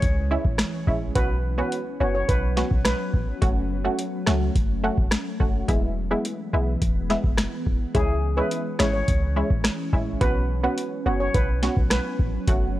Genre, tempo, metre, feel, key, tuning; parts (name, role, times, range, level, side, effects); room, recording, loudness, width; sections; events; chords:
dancehall; 106 BPM; 4/4; straight; A4 = 442 Hz
glassy FM pad; sustained chords; 0.0-12.8 s; E3 to C#4; -32 LUFS; left 1 dB; ensemble chorus, built-in reverb, sidechain pumping
clean 808-style bass; bass; 0.0-12.8 s; E1 to C#2; -25 LUFS; equal
booming analog drum machine; drums; 0.0-12.7 s; hi-hat, kick drum, rim click, snare drum; -23 LUFS; equal
impact; sound effects; 0.8-1.2 s; barely audible
punchy chord stab; accompaniment; 0.3-12.7 s; G#3 to F#4; -27 LUFS; right 1 dB; chorus, sidechain pumping
steel pan; melody; 1.2-3.3, 7.9-12.3 s; G#4 to C#5; -29 LUFS; equal; tape echo
digital ambience; dry, gritty hardware recording; -21 LUFS; side -15 dB against mid
0.0-12.8 A section
impact 0.0-1.2
0.0 C#m; 1.2 Bsus2; 3.4 F#m; 5.7 E; 7.9 C#m; 10.2 Bsus2